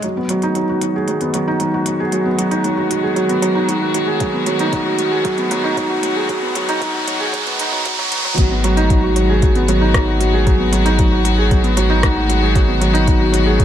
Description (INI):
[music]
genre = piano and strings electronica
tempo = 115 BPM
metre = 4/4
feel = straight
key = G# minor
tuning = A4 = 444 Hz
[part]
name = rich chamber string section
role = sustained chords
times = 0.0-13.6 s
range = D#3 to F#4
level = -22 LUFS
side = left 3 dB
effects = sidechain pumping, low-pass filter
[part]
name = felt-muted upright piano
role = riff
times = 0.0-13.6 s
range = F#3 to G#4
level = -17 LUFS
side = right 2 dB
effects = ping-pong delay
[part]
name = warm sub bass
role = bass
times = 0.0-13.6 s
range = G#1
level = -18 LUFS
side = equal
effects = sidechain pumping, high-pass filter
[part]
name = organic electronic drum kit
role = drums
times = 0.0-13.6 s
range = hi-hat, rim click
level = -25 LUFS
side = left 1 dB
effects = high-pass filter on hats, high-pass filter on snare, high-pass filter on room
[part]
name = swell and riser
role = sound effects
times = 0.0-8.4 s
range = none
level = -25 LUFS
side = right 2 dB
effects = none
[part]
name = electronic kick drum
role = drums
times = 4.2-13.6 s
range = none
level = -16 LUFS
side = left 1 dB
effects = none
[sound]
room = light reverb, digital ambience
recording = high-pass filter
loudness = -14 LUFS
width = side -10 dB against mid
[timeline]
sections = 0.0-8.4 A section; 8.4-13.6 B section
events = build-up 0.0-8.4; riser 0.0-8.4; filter sweep on string section 0.0-8.4; filter sweep 0.0-8.4; drop 8.4-13.6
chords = 0.0 G#m7